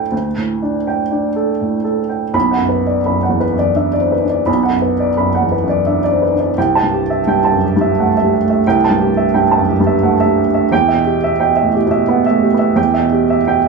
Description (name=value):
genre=neoclassical minimalist piano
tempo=86 BPM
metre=3/4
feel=rubato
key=unclear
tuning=A4 = 439 Hz
part: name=warm upright piano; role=solo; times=0.0-13.7 s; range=B1 to B5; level=-12 LUFS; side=right 2 dB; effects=none
room=moderate studio ambience, RT60 0.4 s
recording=small room ambience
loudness=-12 LUFS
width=side -3 dB against mid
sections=0.0-2.3 A section; 2.3-13.7 B section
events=none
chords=0.0 Dsus4; 2.3 Bm; 6.6 Am7/C; 10.7 Em